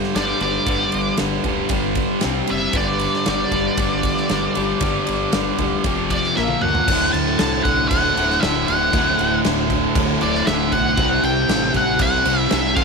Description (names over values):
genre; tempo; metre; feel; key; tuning
classic rock; 116 BPM; 4/4; straight; unclear; A4 = 440 Hz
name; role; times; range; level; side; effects
picked acoustic archtop guitar; accompaniment; 0.0-12.8 s; C3 to G5; -30 LUFS; left 14 dB; none
crunchy overdriven guitar; riff; 0.0-12.8 s; D2 to C5; -24 LUFS; left 12 dB; none
overdriven electric guitar; riff; 0.0-12.8 s; D2 to C4; -23 LUFS; right 15 dB; none
huge arena drum kit; drums; 0.0-12.8 s; crash cymbal, kick drum, ride cymbal, snare drum, toms; -24 LUFS; equal; none
octave-fuzz lead guitar; melody; 0.2-12.8 s; D5 to A5; -22 LUFS; equal; wah, distortion
growling fingered electric bass; bass; 0.2-12.8 s; D1 to D2; -28 LUFS; equal; overdrive
room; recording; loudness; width
little or no reverb; 1960s-style stereo with parts hard left and right; -16 LUFS; side -4 dB against mid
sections
0.0-6.9 A section; 6.9-12.8 B section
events
drum fill 6.4-6.9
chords
0.0 G; 2.2 C5; 2.7 G; 5.8 F5; 6.4 Bb5; 6.9 Dadd9; 11.0 C6